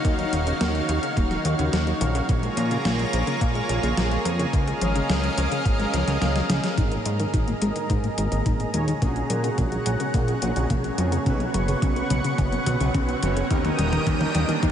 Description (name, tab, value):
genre	synthwave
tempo	107 BPM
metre	4/4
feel	straight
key	Eb minor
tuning	A4 = 440 Hz
part	lush unison pad	sustained chords	0.0-14.7 s	Eb3 to Eb6	-27 LUFS	right 1 dB	chorus, sidechain pumping
part	wide unison pluck	arpeggios	0.0-14.7 s	Db3 to Eb4	-29 LUFS	left 2 dB	analog delay
part	fat analog bass	bass	0.0-14.7 s	Eb1 to Bb2	-26 LUFS	equal	none
part	electronic kick drum	drums	0.0-14.7 s	none	-25 LUFS	equal	overdrive
part	gated 80s digital drum machine	drums	0.0-14.7 s	hi-hat, snare drum, toms	-29 LUFS	left 1 dB	gated reverb, gated reverb snare, overdrive
part	analog synth brass	stabs	6.8-14.7 s	Ab2 to Db5	-30 LUFS	right 2 dB	chorus, cassette tape, analog delay
part	riser	sound effects	9.8-14.7 s	none	-36 LUFS	right 1 dB	none
room	moderate huge ambient reverb, RT60 8.0 s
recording	dreamy mix soaked in reverb, nothing above 10.3 kHz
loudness	-21 LUFS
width	side -9 dB against mid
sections	0.0-6.8 A section; 6.8-14.7 B section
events	drum fill 5.9-6.8, 6.8-14.7; filter sweep on analog synth pad 6.8-14.7; filter sweep on analog polysynth 6.8-14.7; riser 9.8-14.7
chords	0.0 Ebm7; 2.3 Bbm7; 4.5 Db6; 6.8 Absus2; 9.0 Gbadd9/Bb; 11.3 Bsus2; 13.5 Eb